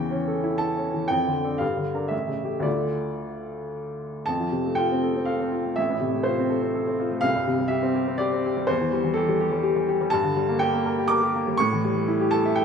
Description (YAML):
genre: classical, romantic character piece for solo piano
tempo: 108-127 BPM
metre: 3/4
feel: rubato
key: D minor, F major from 4.3 s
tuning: A4 = 439 Hz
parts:
  - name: clear upright piano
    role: solo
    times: 0.0-12.6 s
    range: A1 to D6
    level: -22 LUFS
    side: equal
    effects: none
room: wet recital hall reverb, RT60 1.4 s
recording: none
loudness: -22 LUFS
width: side -6 dB against mid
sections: 0.0-4.3 A section; 4.3-12.6 B section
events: none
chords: 0.0 A7/E; 1.1 Dm/F; 1.6 Gm7; 2.1 A7; 2.7 Dm; 4.3 F; 5.8 F/A; 7.3 C; 8.7 C/E; 10.1 Gm; 11.6 A7